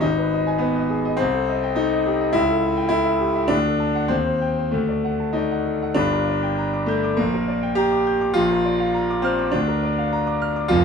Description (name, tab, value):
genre	classical, virtuoso piano study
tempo	102 BPM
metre	2/4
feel	rubato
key	G minor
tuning	A4 = 442 Hz
part	bright concert grand piano	solo	0.0-10.8 s	F1 to G6	-19 LUFS	left 1 dB	none
room	light reverb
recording	dark, warm production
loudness	-19 LUFS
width	side -6 dB against mid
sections	0.0-6.0 A section; 6.0-10.8 B section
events	none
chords	0.0 G#m; 1.2 Am7b5/C; 2.4 A7/C#; 3.5 D; 4.1 Cm/Eb; 4.7 D; 6.0 Gm; 7.2 Gm/Bb; 8.4 Bb; 9.5 Bb/D